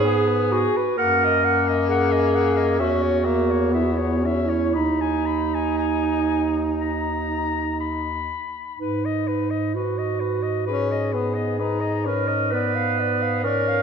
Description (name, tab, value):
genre	classical, lyrical piece for single-reed quartet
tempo	58-67 BPM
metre	4/4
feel	rubato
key	G# minor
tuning	A4 = 440 Hz
part	mellow soprano saxophone	melody	0.0-13.8 s	G#4 to B5	-27 LUFS	left 8 dB	none
part	mellow clarinet	second line	0.0-13.8 s	D#4 to B4	-23 LUFS	right 6 dB	none
part	warm tenor saxophone	accompaniment	0.0-13.8 s	A#3 to D#4	-26 LUFS	left 4 dB	none
part	warm bass clarinet	bass	0.0-13.8 s	D#2 to G#2	-26 LUFS	equal	none
room	wet recital hall reverb, RT60 1.6 s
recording	none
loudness	-20 LUFS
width	side -6 dB against mid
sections	0.0-13.8 A section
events	none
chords	0.0 G#m; 1.0 D#m/F#; 2.8 C#m/E; 4.7 G#m/D#; 8.8 G#m; 12.5 G#dim7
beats	0.05 | 0.98 1.89 2.79 3.74 | 4.75 5.78 6.79 7.79 | 8.78 9.73 10.66 11.59 | 12.51 13.43